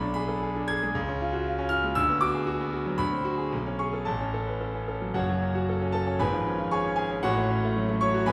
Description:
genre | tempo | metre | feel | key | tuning
classical, virtuoso piano study | 115 BPM | 2/4 | rubato | F# minor | A4 = 440 Hz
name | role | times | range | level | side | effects
bright concert grand piano | solo | 0.0-8.3 s | F#1 to G#6 | -28 LUFS | equal | none
room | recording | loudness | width
wet recital hall reverb, RT60 1.4 s | heard from further back in the room | -28 LUFS | mono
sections
0.0-5.2 A section; 5.2-8.3 B section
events
none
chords
0.0 G#dim/B; 1.0 C#; 2.0 Bm/D; 3.0 D7; 3.5 C#5/B; 4.1 F#m/A; 5.2 F#m; 6.2 C#7/G#; 7.2 F#m/A

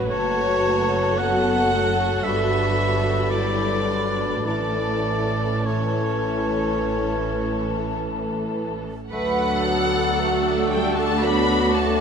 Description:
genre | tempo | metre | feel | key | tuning
classical, slow romantic movement for symphony orchestra | 50-59 BPM | 4/4 | rubato | D major | A4 = 440 Hz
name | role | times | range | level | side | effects
warm symphonic violin section | melody | 0.0-12.0 s | A4 to B5 | -29 LUFS | left 3 dB | none
rich studio viola section | accompaniment | 0.0-12.0 s | E3 to F#4 | -29 LUFS | right 1 dB | none
mellow French horn section | sustained chords | 0.0-12.0 s | E3 to B4 | -27 LUFS | left 3 dB | none
rich symphonic double bass section | bass | 0.0-12.0 s | F#1 to D2 | -29 LUFS | right 3 dB | none
warm symphonic cello section | bass | 0.0-12.0 s | F#2 to B4 | -29 LUFS | right 2 dB | none
dark clarinet | second line | 0.1-12.0 s | E4 to A4 | -32 LUFS | left 1 dB | none
hollow small flute group | second line | 0.1-12.0 s | A5 to E6 | -31 LUFS | left 6 dB | none
rich chamber violin section | second line | 0.1-12.0 s | F#4 to F#5 | -30 LUFS | equal | none
warm oboe | second line | 0.1-8.0 s | C#5 to F#5 | -27 LUFS | equal | none
mellow bassoon | accompaniment | 0.1-12.0 s | D3 to B3 | -30 LUFS | right 2 dB | none
room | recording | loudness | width
wet scoring stage reverb, RT60 1.7 s | none | -19 LUFS | side -6 dB against mid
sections
0.0-9.1 A section; 9.1-12.0 B section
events
none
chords
0.1 F#m; 2.2 Gmaj7; 4.5 A; 9.1 D

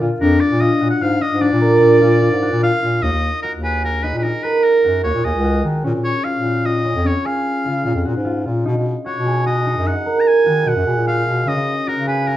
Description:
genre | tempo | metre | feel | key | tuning
contemporary instrumental, chamber music in an uneven meter | 149 BPM | 7/4 | straight | Eb minor from 3.0 s | A4 = 438 Hz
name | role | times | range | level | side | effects
concert harp | arpeggios | 0.0-12.4 s | Db4 to Bb4 | -18 LUFS | right 1 dB | none
clear bass clarinet | bass | 0.0-12.4 s | Db2 to D#3 | -19 LUFS | left 1 dB | none
bright oboe | melody | 0.2-12.4 s | Bb4 to A#5 | -22 LUFS | left 1 dB | none
room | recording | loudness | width
wet studio reverb, RT60 0.7 s | heard from further back in the room | -15 LUFS | side -13 dB against mid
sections
0.0-3.0 A section; 3.0-12.4 B section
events
none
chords
0.0 Bb; 3.0 Ebm; 5.8 Bbm7; 8.7 Bmaj7; 11.5 Dbsus4

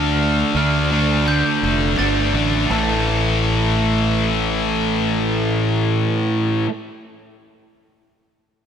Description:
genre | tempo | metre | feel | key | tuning
rock | 84 BPM | 4/4 | straight | unclear | A4 = 440 Hz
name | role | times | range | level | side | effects
glockenspiel with soft plastic mallets | arpeggios | 0.0-3.1 s | A5 to A6 | -27 LUFS | right 2 dB | analog delay, slapback echo
sludgy distorted guitar | riff | 0.0-6.7 s | A2 to D4 | -21 LUFS | right 7 dB | overdrive
tight distorted guitar | riff | 0.0-6.7 s | A2 to D4 | -21 LUFS | left 10 dB | distortion
fuzz fingered electric bass | bass | 0.0-6.6 s | F1 to D2 | -21 LUFS | left 1 dB | overdrive
room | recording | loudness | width
moderate lush hall reverb, RT60 2.7 s | big arena sound | -16 LUFS | side -8 dB against mid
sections
0.0-2.7 A section; 2.7-5.5 B section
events
none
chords
0.0 Dm; 2.7 A5

